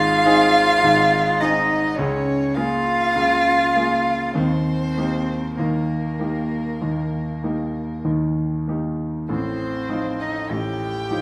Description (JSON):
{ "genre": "classical, slow romantic movement for piano trio", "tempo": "47-53 BPM", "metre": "4/4", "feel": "rubato", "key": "unclear", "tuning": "A4 = 440 Hz", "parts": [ { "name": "warm violin", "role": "melody", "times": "0.0-11.2 s", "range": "Bb4 to G5", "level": "-29 LUFS", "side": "equal", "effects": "none" }, { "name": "dark cello", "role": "second line", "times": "0.0-11.2 s", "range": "Bb3 to G4", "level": "-23 LUFS", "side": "equal", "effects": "none" }, { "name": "clear grand piano", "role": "accompaniment", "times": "0.0-11.2 s", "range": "Ab1 to Ab4", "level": "-25 LUFS", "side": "equal", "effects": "none" } ], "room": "wet stone room reverb, RT60 1.4 s", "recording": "none", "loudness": "-21 LUFS", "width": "mono", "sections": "0.0-11.2 A section", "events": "none", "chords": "0.0 Ab; 2.0 Db6; 4.4 Eb; 9.3 F7/A" }